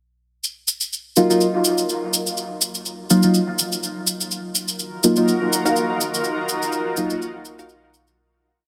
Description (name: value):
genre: dub techno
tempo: 124 BPM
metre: 4/4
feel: swing 55% on 16ths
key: Eb minor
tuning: A4 = 441 Hz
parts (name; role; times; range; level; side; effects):
- cabasa; percussion; 0.4-8.2 s; none; -24 LUFS; equal; none
- deep mellow chord stab; stabs; 1.2-7.3 s; Gb3 to F4; -22 LUFS; equal; chorus, phaser, dub echo
- granular cloud pad; sustained chords; 4.8-8.1 s; Eb4 to Bb4; -28 LUFS; equal; built-in reverb
- wavetable chord stab; riff; 5.7-7.8 s; Eb4 to F5; -27 LUFS; equal; dub echo
room: moderate huge ambient reverb, RT60 6.5 s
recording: dense, heavily limited modern master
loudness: -21 LUFS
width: mono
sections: 0.4-8.2 groove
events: fade-out 5.6-8.2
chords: 0.4 Ebmadd9